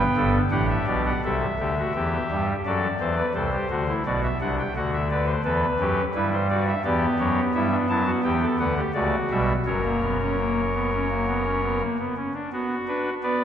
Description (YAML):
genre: classical, baroque-style 4-part fugue for pipe organ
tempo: 85 BPM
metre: 4/4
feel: straight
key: B minor from 6.8 s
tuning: A4 = 441 Hz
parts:
  - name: pipe organ, soft reed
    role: solo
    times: 0.0-13.4 s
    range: F#1 to A5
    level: -22 LUFS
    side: equal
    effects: none
room: wet church reverb, RT60 3.3 s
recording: none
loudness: -22 LUFS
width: side -9 dB against mid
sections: 0.0-1.2 A section; 1.2-12.5 B section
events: none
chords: 0.0 G; 1.2 C; 2.7 F#dim; 4.0 Bm; 5.4 Em; 9.6 F#; 12.5 Bm